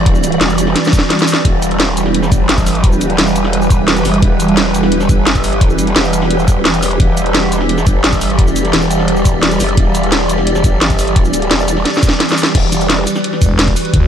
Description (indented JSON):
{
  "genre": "dark technical drum and bass",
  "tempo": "173 BPM",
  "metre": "4/4",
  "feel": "straight",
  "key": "E minor",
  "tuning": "A4 = 440 Hz",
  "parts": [
    { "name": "swarming drone", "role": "sustained chords", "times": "0.0-14.1 s", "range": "E3 to D5", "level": "-15 LUFS", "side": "right 1 dB", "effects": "built-in reverb, vintage 12-bit sampler grit, sidechain pumping" },
    { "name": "growl bass", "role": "bass", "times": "0.0-13.1 s", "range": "E1 to G1", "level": "-16 LUFS", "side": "equal", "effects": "chorus, overdrive" },
    { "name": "drum and bass drum kit", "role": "drums", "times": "0.1-14.0 s", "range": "crash cymbal, hi-hat, ride cymbal, shaker, snare drum", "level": "-16 LUFS", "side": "equal", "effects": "none" },
    { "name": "electronic kick drum", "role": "drums", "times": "0.1-14.0 s", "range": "none", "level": "-13 LUFS", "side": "equal", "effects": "none" },
    { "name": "growling FM bass", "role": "bass", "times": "13.4-14.1 s", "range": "E1 to D2", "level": "-13 LUFS", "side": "equal", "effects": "none" }
  ],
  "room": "light reverb",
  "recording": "none",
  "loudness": "-10 LUFS",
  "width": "side -9 dB against mid",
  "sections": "0.0-12.5 A section; 12.5-14.1 A section",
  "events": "drop 0.0-12.5, 12.5-14.1; drum fill 0.8-1.4, 11.9-12.5",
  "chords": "0.0 Emadd9",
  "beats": "| 0.06 0.41 0.76 1.10 | 1.45 1.80 2.14 2.49 | 2.84 3.18 3.53 3.88 | 4.22 4.57 4.92 5.26 | 5.61 5.96 6.31 6.65 | 7.00 7.35 7.69 8.04 | 8.39 8.73 9.08 9.43 | 9.77 10.12 10.47 10.81 | 11.16 11.51 11.86 12.20 | 12.55 12.89 13.24 13.59 | 13.94"
}